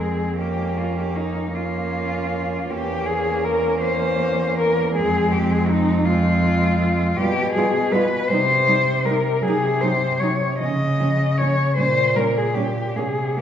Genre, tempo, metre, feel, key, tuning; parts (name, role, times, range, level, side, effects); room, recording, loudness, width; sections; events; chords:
classical, lyrical piece for cello ensemble; 53 BPM (dotted quarters); 6/8; uneven beats, rubato; F minor; A4 = 440 Hz
muted cello; melody; 0.0-13.4 s; Eb4 to Eb5; -21 LUFS; left 2 dB
muted cello; second line; 0.0-13.1 s; C4 to F4; -29 LUFS; right 6 dB
muted cello; accompaniment; 0.0-13.4 s; F3 to Bb3; -27 LUFS; equal
muted cello; bass; 0.0-13.4 s; E2 to Db3; -23 LUFS; right 1 dB
wet recital hall reverb, RT60 1.6 s; heard from further back in the room; -18 LUFS; side -9 dB against mid
0.0-13.4 A section
0.4 Eb9/F (rootless); 2.7 Edim7(no3); 5.0 Fm; 7.2 G7/B; 8.3 Cm; 9.4 Cdim; 10.6 Db; 11.8 Gdim/Bb